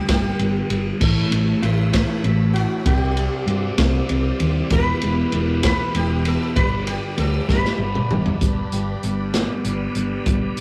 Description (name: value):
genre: psychedelic rock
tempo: 65 BPM (dotted quarters)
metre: 6/8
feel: straight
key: unclear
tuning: A4 = 440 Hz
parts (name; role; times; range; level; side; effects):
- sitar; melody; 0.0-8.1 s; E4 to B4; -30 LUFS; equal; none
- fuzz guitar; riff; 0.0-10.6 s; E2 to G4; -28 LUFS; equal; distortion, phaser
- hollow-body short-scale fingered electric bass; bass; 0.1-10.6 s; E1 to G2; -24 LUFS; equal; none
- crunchy breakbeat drum kit; drums; 0.1-10.6 s; crash cymbal, hi-hat, kick drum, ride cymbal, snare drum, toms; -25 LUFS; equal; none
- tonewheel organ; sustained chords; 1.0-10.6 s; G4 to C6; -36 LUFS; equal; slow rotary speaker, chorus vibrato
room: wet small room reverb, RT60 0.5 s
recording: rough rehearsal-room recording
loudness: -20 LUFS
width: mono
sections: 0.0-8.4 A section; 8.4-10.6 B section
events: drum fill 7.5-8.4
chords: 0.0 G5; 1.0 Aadd9; 2.9 Cadd9; 4.7 Em; 6.6 G